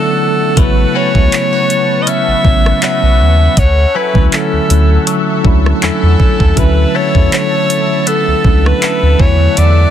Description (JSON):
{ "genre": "contemporary R&B", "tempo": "80 BPM", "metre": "4/4", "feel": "swing 54% on 16ths", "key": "A major", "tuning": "A4 = 440 Hz", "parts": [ { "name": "breathy alto saxophone", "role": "melody", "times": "0.0-9.9 s", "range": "A4 to E5", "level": "-15 LUFS", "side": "left 1 dB", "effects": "ping-pong delay" }, { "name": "mellow tine electric piano", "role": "accompaniment", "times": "0.0-9.9 s", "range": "C#3 to F#4", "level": "-16 LUFS", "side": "right 1 dB", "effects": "medium stereo tremolo" }, { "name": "lush unison pad", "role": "sustained chords", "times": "0.0-9.9 s", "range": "A4 to C#6", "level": "-22 LUFS", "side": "equal", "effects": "chorus, sidechain pumping" }, { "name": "direct-recorded clean electric guitar", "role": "arpeggios", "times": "0.0-9.9 s", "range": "E3 to B4", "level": "-22 LUFS", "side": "left 10 dB", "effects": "phaser, ping-pong delay" }, { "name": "warm sub bass", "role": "bass", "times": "0.6-9.9 s", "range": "A1 to E2", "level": "-11 LUFS", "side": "equal", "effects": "none" }, { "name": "smooth R&B drum kit", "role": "drums", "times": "0.6-9.8 s", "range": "handclaps, hi-hat, kick drum, rim click", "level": "-12 LUFS", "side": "equal", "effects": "none" } ], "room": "little or no reverb", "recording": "dense, heavily limited modern master", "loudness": "-9 LUFS", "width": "side -10 dB against mid", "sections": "0.0-9.9 A section", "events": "break 0.0-0.6", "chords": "0.0 E9sus4; 0.6 A69; 3.6 Dmaj9; 6.6 Bm11/D; 9.2 E9sus4" }